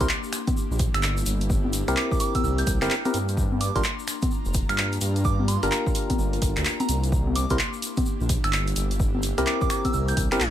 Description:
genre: UK garage, two-step garage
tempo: 128 BPM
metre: 4/4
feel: swing 63% on 16ths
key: unclear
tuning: A4 = 441 Hz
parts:
  - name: soft synth bell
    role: melody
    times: 0.0-10.5 s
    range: Bb5 to G6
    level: -32 LUFS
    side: right 4 dB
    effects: chorus, ping-pong delay
  - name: airy breathy pad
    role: sustained chords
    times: 0.0-10.5 s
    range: Bb3 to Bb5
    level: -35 LUFS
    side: left 3 dB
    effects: chorus, sidechain pumping
  - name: percussive organ stab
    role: stabs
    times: 0.0-10.4 s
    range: C4 to Bb4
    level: -28 LUFS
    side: left 1 dB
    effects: chorus, cassette tape, ping-pong delay
  - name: dark detuned saw bass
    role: bass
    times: 0.0-10.5 s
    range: F1 to G2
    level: -26 LUFS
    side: equal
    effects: tube saturation
  - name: electronic kick drum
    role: drums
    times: 0.0-10.3 s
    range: none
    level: -26 LUFS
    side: equal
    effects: none
  - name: punchy analog drum machine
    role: drums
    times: 0.0-10.5 s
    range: congas, finger snaps, handclaps, hi-hat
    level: -28 LUFS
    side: left 1 dB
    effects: none
  - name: egg shaker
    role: percussion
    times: 0.0-10.5 s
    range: none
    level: -37 LUFS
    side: left 4 dB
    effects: none
room: little or no reverb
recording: tape stop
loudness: -22 LUFS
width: side -11 dB against mid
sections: 0.0-10.5 A section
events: none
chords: 0.0 C7; 3.4 Gm7; 7.1 C7

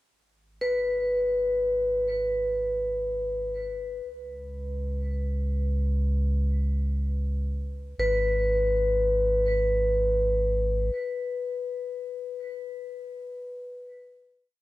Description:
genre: ambient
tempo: free time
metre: none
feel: none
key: G# minor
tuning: A4 = 440 Hz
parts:
  - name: warm sub bass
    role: bass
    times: 0.1-10.9 s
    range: G#1 to C#2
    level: -28 LUFS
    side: equal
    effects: none
  - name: vibraphone with hard mallets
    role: arpeggios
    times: 0.6-14.5 s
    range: B4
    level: -27 LUFS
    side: left 1 dB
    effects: diffuse ambient delay
room: wet cathedral reverb, RT60 4.8 s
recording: dark, warm production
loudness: -25 LUFS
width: side -17 dB against mid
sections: 0.1-8.0 A section; 8.0-11.9 final chord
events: fade-in on sub bass 0.1-8.0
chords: 0.1 G#m; 4.1 N.C.; 8.0 G#m

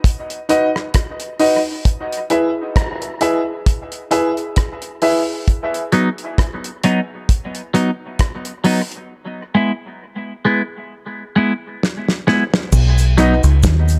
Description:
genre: dub reggae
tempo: 66 BPM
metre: 4/4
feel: swing 56% on 16ths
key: B major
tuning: A4 = 442 Hz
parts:
  - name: damped 70s drum kit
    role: drums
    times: 0.0-14.0 s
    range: crash cymbal, hi-hat, kick drum, rim click, snare drum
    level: -21 LUFS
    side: equal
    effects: none
  - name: clear concert grand piano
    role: stabs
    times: 0.5-5.2, 13.2-13.4 s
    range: D#4 to E5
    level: -21 LUFS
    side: equal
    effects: dub echo
  - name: clean electric guitar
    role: accompaniment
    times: 5.9-13.3 s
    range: F#3 to E4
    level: -20 LUFS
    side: equal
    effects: phaser, dub echo
  - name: deep dub fingered electric bass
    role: bass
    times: 12.7-14.0 s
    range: B1 to D#2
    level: -14 LUFS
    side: equal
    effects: none
  - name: cabasa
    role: percussion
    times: 12.7-14.0 s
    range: none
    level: -31 LUFS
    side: equal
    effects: none
room: moderate spring reverb, RT60 2.4 s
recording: none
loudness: -18 LUFS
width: mono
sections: 0.0-12.7 A section; 12.7-14.0 B section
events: break 0.0-5.5; drum fill 11.8-12.7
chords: 0.0 B; 1.9 E; 5.5 B; 9.1 E; 12.7 B

